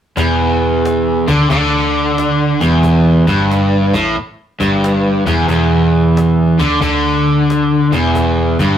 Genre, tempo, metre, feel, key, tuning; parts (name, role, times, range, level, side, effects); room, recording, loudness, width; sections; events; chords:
blues rock power trio and southern rock; 90 BPM; 4/4; swing 67% on 8ths; E minor; A4 = 439 Hz
crunchy overdriven guitar; riff; 0.2-8.8 s; E2 to D3; -12 LUFS; equal
vintage muted fingered electric bass; bass; 0.2-8.8 s; E1 to D2; -19 LUFS; equal
cajon; drums; 0.2-8.7 s; -26 LUFS; equal
wet studio reverb, RT60 0.6 s; rough rehearsal-room recording, tube saturation; -11 LUFS; side -9 dB against mid
0.2-8.8 A section
0.2 Em